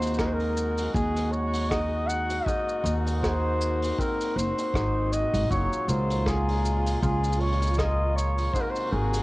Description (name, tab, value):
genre	folktronica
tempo	79 BPM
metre	4/4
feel	swing 56% on 16ths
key	unclear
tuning	A4 = 440 Hz
part	warm flugelhorn	melody	0.0-9.2 s	Ab4 to Gb5	-29 LUFS	equal	cassette tape
part	dark string quartet	sustained chords	0.0-9.2 s	Bb2 to Gb4	-36 LUFS	equal	cassette tape
part	hammered dulcimer	arpeggios	0.0-9.2 s	Ab2 to Bb4	-33 LUFS	left 2 dB	vintage 12-bit sampler grit, cassette tape, tape echo
part	upright bass	bass	0.0-9.2 s	Gb1 to Eb2	-26 LUFS	equal	tube saturation
part	vintage brush drum kit	drums	0.0-9.2 s	hi-hat, rim click, shaker	-36 LUFS	equal	cassette tape
part	kick drum	drums	0.2-8.7 s	none	-32 LUFS	equal	cassette tape
room	light reverb, small room reverb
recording	home recording on cassette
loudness	-24 LUFS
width	side -20 dB against mid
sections	0.0-9.2 A section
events	none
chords	0.0 Ab7; 5.5 Gbmaj9; 8.5 Ab9